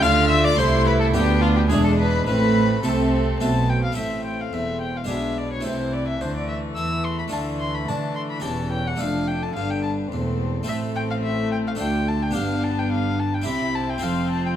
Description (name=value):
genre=classical, baroque-style concerto movement with solo episodes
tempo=107 BPM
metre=3/4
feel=straight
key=A minor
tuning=A4 = 440 Hz
part: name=dark violin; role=melody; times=0.0-14.5 s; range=F4 to E6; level=-27 LUFS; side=left 3 dB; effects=none
part: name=warm chamber violin section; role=melody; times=0.0-14.6 s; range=F4 to F6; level=-32 LUFS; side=left 6 dB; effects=none
part: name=warm chamber violin section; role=second line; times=0.0-14.6 s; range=A3 to F4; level=-29 LUFS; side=left 2 dB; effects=none
part: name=dark chamber viola section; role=accompaniment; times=0.0-14.6 s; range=D3 to C4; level=-28 LUFS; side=equal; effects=none
part: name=harpsichord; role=accompaniment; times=0.0-14.6 s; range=D2 to A4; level=-29 LUFS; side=right 1 dB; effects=none
part: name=rich chamber double bass section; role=bass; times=0.0-14.6 s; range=E1 to D3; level=-27 LUFS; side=right 2 dB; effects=none
part: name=warm chamber cello section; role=bass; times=0.0-14.6 s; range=D2 to D4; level=-26 LUFS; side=right 2 dB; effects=none
room=moderate recital hall reverb, RT60 1.6 s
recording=none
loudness=-20 LUFS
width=side -10 dB against mid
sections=0.0-4.0 A section; 4.0-14.6 B section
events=none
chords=0.0 Dm; 0.6 Am/C; 1.1 Bdim/D; 1.7 E7; 2.3 Am; 5.1 G#dim/B; 5.7 Am/C; 7.3 Dm; 8.5 C#dim/E; 9.0 Dm/F; 10.7 Am; 11.8 Dm; 12.4 G; 13.5 C; 14.0 F